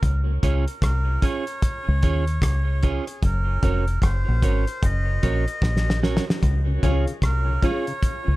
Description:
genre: dub reggae.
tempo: 75 BPM.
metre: 4/4.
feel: swing 62% on 16ths.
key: Db major.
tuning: A4 = 436 Hz.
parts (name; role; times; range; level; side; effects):
deep dub fingered electric bass; bass; 0.0-8.4 s; F1 to Eb2; -21 LUFS; equal; none.
cloth-damped thuddy drum kit; drums; 0.0-8.3 s; hi-hat, kick drum, rim click, snare drum; -23 LUFS; equal; none.
clean electric guitar; accompaniment; 0.4-7.8 s; Db4 to Db5; -30 LUFS; right 6 dB; dub echo.
melodica; melody; 0.8-8.4 s; Ab4 to Eb5; -31 LUFS; right 1 dB; dub echo.
mellow tonewheel organ; accompaniment; 6.7-8.3 s; Db3 to Db4; -36 LUFS; left 1 dB; slow rotary speaker, dub echo.
clear upright piano; stabs; 6.8-7.8 s; F4 to Db5; -30 LUFS; left 3 dB; dub echo.
room: small room ambience.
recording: echo-heavy mix.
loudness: -20 LUFS.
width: side -18 dB against mid.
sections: 0.0-8.4 A section.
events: break 0.0-6.4; drum fill 5.6-6.4.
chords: 0.0 Db; 3.2 Gb; 6.4 Db.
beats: | 0.03 0.83 1.63 2.43 | 3.23 4.03 4.83 5.63 | 6.43 7.23 8.03.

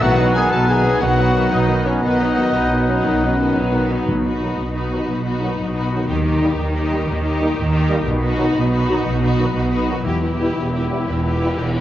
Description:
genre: cinematic.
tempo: 120 BPM (dotted quarters).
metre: 12/8.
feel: straight.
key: B major from 4.1 s.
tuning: A4 = 440 Hz.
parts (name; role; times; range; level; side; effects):
warm symphonic violin section; melody; 0.0-11.8 s; A#4 to A5; -29 LUFS; left 4 dB; none.
bright symphonic violin section; second line; 0.0-11.8 s; B3 to G4; -28 LUFS; left 2 dB; none.
mellow clarinet; second line; 0.0-3.9 s; B3; -26 LUFS; equal; none.
mellow concert flute; second line; 0.0-3.9 s; F#6; -27 LUFS; left 1 dB; none.
warm symphonic viola section; accompaniment; 0.0-11.8 s; D#3 to E4; -24 LUFS; equal; none.
clear trombone section; sustained chords; 0.0-11.5 s; B2 to G3; -27 LUFS; right 2 dB; none.
mellow French horn section; sustained chords; 0.0-11.5 s; A#3 to B4; -27 LUFS; left 1 dB; none.
concert harp; arpeggios; 0.0-11.8 s; B2 to G5; -26 LUFS; left 4 dB; none.
clear trumpet section; stabs; 0.0-3.5 s; C#4 to A4; -23 LUFS; equal; none.
dark symphonic double bass section; bass; 0.0-11.8 s; E1 to D#2; -23 LUFS; right 2 dB; none.
warm symphonic cello section; bass; 0.0-11.8 s; E2 to D#3; -23 LUFS; right 1 dB; none.
timpani; percussion; 4.1-4.6 s; B2; -28 LUFS; left 1 dB; none.
room: wet recital hall reverb, RT60 1.4 s.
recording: worn, warbling old tape, cassette tape, warbly pitch drift, nothing above 7.8 kHz.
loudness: -16 LUFS.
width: side -13 dB against mid.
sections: 0.0-4.1 A section; 4.1-11.8 B section.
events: none.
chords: 0.0 B; 6.1 D#; 8.1 B; 10.1 Em.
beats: | 0.02 0.52 1.02 1.52 | 2.04 2.55 3.07 3.58 | 4.09 4.59 5.09 5.59 | 6.08 6.58 7.08 7.57 | 8.06 8.56 9.05 9.55 | 10.06 10.58 11.09 11.60.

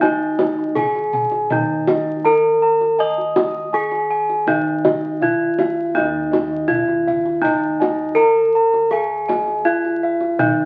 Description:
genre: Javanese gamelan.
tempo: 81 BPM.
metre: 4/4.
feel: straight.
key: unclear.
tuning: A4 = 440 Hz.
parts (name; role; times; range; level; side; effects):
gamelan-type bronze metallophone; melody; 0.0-10.7 s; Eb4 to Eb5; -20 LUFS; equal; none.
gamelan-type bossed gongs; arpeggios; 0.0-10.7 s; Eb5 to Bb5-40c; -29 LUFS; equal; none.
gamelan-type bronze metallophone; arpeggios; 0.0-10.7 s; Eb5 to Eb6; -25 LUFS; equal; none.
gamelan-type bossed gongs; bass; 0.0-10.7 s; Eb2 to Eb5; -35 LUFS; equal; none.
kendang; percussion; 0.0-10.6 s; none; -25 LUFS; equal; none.
room: wet studio reverb, RT60 1.0 s.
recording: very old 78 rpm record, vinyl crackle, nothing above 7.8 kHz.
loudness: -18 LUFS.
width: mono.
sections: 0.0-10.7 A section.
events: none.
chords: none.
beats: | 0.03 0.77 1.51 2.25 | 2.99 3.73 4.47 5.21 | 5.95 6.69 7.43 8.17 | 8.91 9.65 10.39.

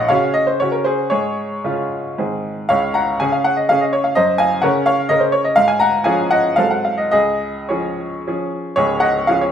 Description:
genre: classical, romantic triple-time dance for piano with dotted rhythms.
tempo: 99-137 BPM.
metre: 3/4.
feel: rubato.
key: Db major.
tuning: A4 = 440 Hz.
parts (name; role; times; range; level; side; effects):
bright baby grand piano; solo; 0.0-9.5 s; Db1 to Bb5; -15 LUFS; equal; none.
room: moderate large studio reverb, RT60 1.1 s.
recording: heard from further back in the room.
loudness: -15 LUFS.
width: side -8 dB against mid.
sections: 0.0-8.8 A section.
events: none.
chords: 0.0 Gb/Bb; 1.1 Db/Ab; 2.2 Ab; 2.7 Db5; 4.2 Gb; 5.6 Db/Ab; 6.6 Ab7b9; 7.1 Db.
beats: 0.10 0.61 | 1.12 1.65 2.19 | 2.71 3.21 3.71 | 4.17 4.63 5.11 | 5.58 6.06 6.58 | 7.12 7.69 8.27 | 8.79 9.30.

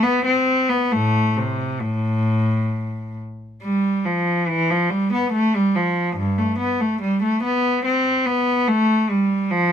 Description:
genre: classical, baroque-style suite movement for unaccompanied cello.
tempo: 66-73 BPM.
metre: 3/4.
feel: rubato.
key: A minor.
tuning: A4 = 439 Hz.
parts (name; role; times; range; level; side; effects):
rich cello; solo; 0.0-9.7 s; G2 to C4; -18 LUFS; equal; none.
room: light reverb.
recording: minimal, uncompressed stereo recording, faint mains hum.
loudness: -18 LUFS.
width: side -8 dB against mid.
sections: 0.0-3.6 A section; 3.6-9.7 A section.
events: none.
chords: none.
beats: 0.05 | 0.93 1.83 2.74 | 3.64 4.51 5.36 | 6.20 7.03 7.85 | 8.68 9.51.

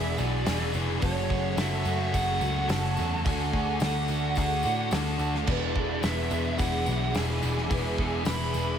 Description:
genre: rock, shoegaze and dream pop.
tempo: 108 BPM.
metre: 4/4.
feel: straight.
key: E mixolydian.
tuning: A4 = 440 Hz.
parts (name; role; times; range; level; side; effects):
fuzz lead guitar; melody; 0.0-8.8 s; C#5 to B5; -33 LUFS; right 1 dB; distortion, analog delay.
phased analog pad; sustained chords; 0.0-8.8 s; G#4 to E6; -38 LUFS; equal; phaser, chorus.
electric guitar through a small old amp; arpeggios; 0.0-8.8 s; F#4 to B4; -38 LUFS; left 1 dB; ensemble chorus, analog delay.
overdriven electric guitar; riff; 0.0-8.8 s; E2 to G#4; -32 LUFS; right 9 dB; reverse reverb.
thick fuzz guitar; riff; 0.0-8.8 s; E2 to D4; -32 LUFS; left 10 dB; distortion, lush chorus.
vintage muted picked electric bass; bass; 0.0-8.8 s; E1 to A2; -30 LUFS; equal; none.
tambourine; percussion; 0.2-8.7 s; none; -46 LUFS; left 14 dB; none.
loose indie drum kit; drums; 0.5-8.4 s; crash cymbal, hi-hat, kick drum, snare drum; -33 LUFS; equal; none.
room: light reverb, studio reverb.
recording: none.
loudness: -25 LUFS.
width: side -8 dB against mid.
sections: 0.0-8.8 A section.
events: none.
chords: 0.0 E7; 1.0 F#m7; 3.3 Dmaj7; 5.5 E7.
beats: 0.47 | 1.02 1.58 2.14 2.69 | 3.25 3.81 4.37 4.92 | 5.48 6.04 6.59 7.15 | 7.71 8.26.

